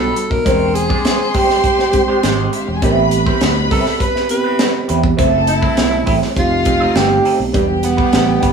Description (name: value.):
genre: lush 1970s-style soul.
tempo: 102 BPM.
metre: 4/4.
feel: straight.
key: E minor.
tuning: A4 = 440 Hz.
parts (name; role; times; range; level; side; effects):
breathy tenor saxophone; melody; 0.0-8.5 s; B3 to B4; -17 LUFS; right 1 dB; none.
rich studio string section; second line; 0.0-8.5 s; E4 to B#5; -23 LUFS; left 2 dB; none.
reed electric piano; accompaniment; 0.0-8.5 s; G3 to G5; -20 LUFS; right 1 dB; fast tremolo.
electric guitar through a small old amp; riff; 0.0-8.5 s; F#3 to D5; -21 LUFS; right 2 dB; wah, spring reverb.
fingered electric bass; bass; 0.0-8.5 s; E1 to E2; -19 LUFS; right 1 dB; none.
tight funk drum kit; drums; 0.2-8.5 s; hi-hat, kick drum, snare drum; -18 LUFS; right 1 dB; none.
room: moderate studio reverb, RT60 0.7 s.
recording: band playing live in one room, small room ambience.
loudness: -12 LUFS.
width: side -6 dB against mid.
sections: 0.0-7.5 A section.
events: none.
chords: 0.5 E7alt; 2.8 Am9; 5.2 F#m7b5; 6.4 F9; 7.5 Em7.